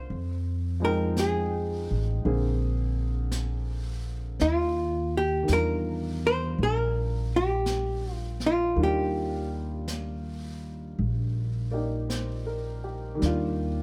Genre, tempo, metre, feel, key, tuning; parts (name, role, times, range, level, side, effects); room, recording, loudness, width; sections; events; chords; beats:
jazz ballad; 55 BPM; 4/4; swing 68% on 8ths; Eb major; A4 = 438 Hz
archtop guitar, miked and amplified; melody; 0.0-12.1 s; F4 to C5; -30 LUFS; equal
warm upright piano; accompaniment; 0.0-13.8 s; D3 to G5; -36 LUFS; equal
upright bass; bass; 0.0-13.8 s; A1 to F2; -31 LUFS; equal
jazz brush drum kit; drums; 0.1-13.8 s; brushed snare drum, hi-hat, snare drum; -42 LUFS; equal
light reverb; -28 LUFS; mono
0.0-13.2 A section
0.1 Fm9; 2.2 Bb9; 4.4 Ebmaj9
| 0.08 1.16 2.23 3.31 | 4.39 5.48 6.57 7.67 | 8.77 9.87 10.97 12.09 | 13.21